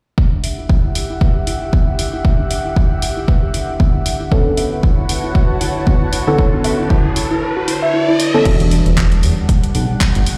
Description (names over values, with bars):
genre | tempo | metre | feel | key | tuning
deep house | 116 BPM | 4/4 | swing 57% on 16ths | E minor | A4 = 440 Hz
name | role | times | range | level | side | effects
warbly dusty pluck | arpeggios | 0.2-8.4 s | B3 to E5 | -24 LUFS | equal | lush chorus, sidechain pumping, tape echo
electronic kick drum | drums | 0.2-10.1 s | none | -16 LUFS | equal | none
airy breathy pad | texture | 0.4-10.4 s | D3 to A5 | -25 LUFS | equal | chorus, sidechain pumping
house drum kit | drums | 0.4-10.4 s | crash cymbal, handclaps, hi-hat | -26 LUFS | equal | none
deep mellow chord stab | stabs | 4.3-10.4 s | D3 to A4 | -21 LUFS | equal | chorus, cassette tape, sidechain pumping, tape echo
riser | sound effects | 6.5-8.5 s | none | -28 LUFS | equal | none
soft string machine | texture | 4.3-8.5 s | F#4 to F#5 | -30 LUFS | equal | phaser, ensemble chorus
smooth synth bass | bass | 8.5-10.2 s | E1 to E2 | -17 LUFS | equal | sidechain pumping
room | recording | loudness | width
light reverb | played on a big sound system in a bare room, large studio reverb | -16 LUFS | mono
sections
0.2-8.5 A section; 8.5-10.4 B section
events
riser 6.5-8.5; kick drops out 7.4-8.5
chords
0.2 Em9; 4.3 Bm9; 8.5 Em9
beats
| 0.18 0.70 1.21 1.73 | 2.25 2.77 3.28 3.80 | 4.32 4.83 5.35 5.87 | 6.39 6.90 7.42 7.94 | 8.46 8.97 9.49 10.01